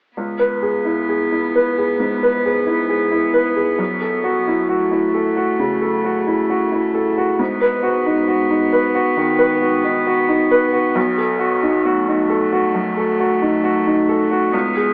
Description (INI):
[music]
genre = neoclassical piano and strings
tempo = 67 BPM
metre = 4/4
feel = rubato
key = C# minor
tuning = A4 = 440 Hz
[part]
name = rich cello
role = second line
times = 0.2-14.9 s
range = A3 to B3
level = -25 LUFS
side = equal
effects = none
[part]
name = clear upright piano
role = accompaniment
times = 0.2-14.9 s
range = B1 to B4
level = -18 LUFS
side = equal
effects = none
[sound]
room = moderate plate reverb, RT60 3.2 s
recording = AM radio sound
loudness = -18 LUFS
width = mono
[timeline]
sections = 0.2-14.9 A section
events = none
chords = 0.2 C#m7; 3.8 F#m7; 7.4 G#m7; 11.0 B7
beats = | 0.17 1.08 1.99 2.89 | 3.79 4.69 5.59 6.50 | 7.39 8.28 9.17 10.06 | 10.95 11.85 12.74 13.64 | 14.53